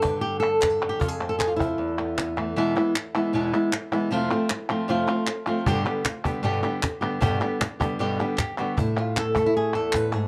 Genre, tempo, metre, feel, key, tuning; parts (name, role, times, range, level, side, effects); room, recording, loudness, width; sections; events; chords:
flamenco; 154 BPM; 4/4; straight; A4 = 441 Hz
flamenco guitar; melody; 0.0-10.3 s; E2 to B4; -26 LUFS; equal; tape echo
cajon; percussion; 0.0-2.6, 5.7-10.3 s; -30 LUFS; equal
palmas hand claps; percussion; 0.0-10.3 s; -32 LUFS; equal
wet small room reverb, RT60 0.5 s; cassette tape; -25 LUFS; mono
0.0-2.6 A section; 2.6-8.8 B section; 8.8-10.3 C section
0.0 G; 1.0 F5; 1.8 Esus4; 2.6 E; 4.1 F; 5.7 G; 8.8 A5